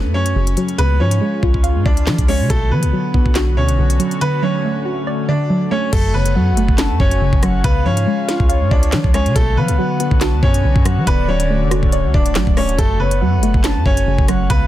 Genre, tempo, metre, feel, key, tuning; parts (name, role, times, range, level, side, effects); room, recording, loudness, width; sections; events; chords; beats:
hip hop, drill; 140 BPM; 4/4; half-time; F# harmonic minor; A4 = 438 Hz
bright upright piano; melody; 0.0-14.7 s; A3 to D5; -22 LUFS; equal; ping-pong delay
hollow square pluck; accompaniment; 0.0-14.7 s; F#2 to E#5; -21 LUFS; right 1 dB; chorus, phaser
sweeping resonant pad; sustained chords; 0.0-14.7 s; D3 to F#4; -25 LUFS; left 2 dB; chorus
long sustained 808-style bass; bass; 0.0-14.7 s; D1 to F#3; -17 LUFS; equal
drill drum kit; drums; 0.3-14.6 s; crash cymbal, handclaps, hi-hat, kick drum, rim click, snare drum; -17 LUFS; equal
breathy flute-like synth lead; second line; 6.1-14.7 s; C#5 to A5; -26 LUFS; left 3 dB; chorus, ping-pong delay
digital ambience; dense, heavily limited modern master; -13 LUFS; side -13 dB against mid
0.0-5.9 A section; 5.9-14.7 B section
break 4.2-5.9
0.0 F#m; 0.8 C#; 2.5 Bm; 4.2 D; 5.9 F#m; 7.6 C#; 9.4 Bm; 11.1 D; 12.8 F#m
0.36 | 0.79 1.21 1.64 2.07 | 2.50 2.93 3.36 3.79 | 4.21 4.64 5.07 5.50 | 5.93 6.36 6.79 7.21 | 7.64 8.07 8.50 8.93 | 9.36 9.79 10.21 10.64 | 11.07 11.50 11.93 12.36 | 12.79 13.21 13.64 14.07 | 14.50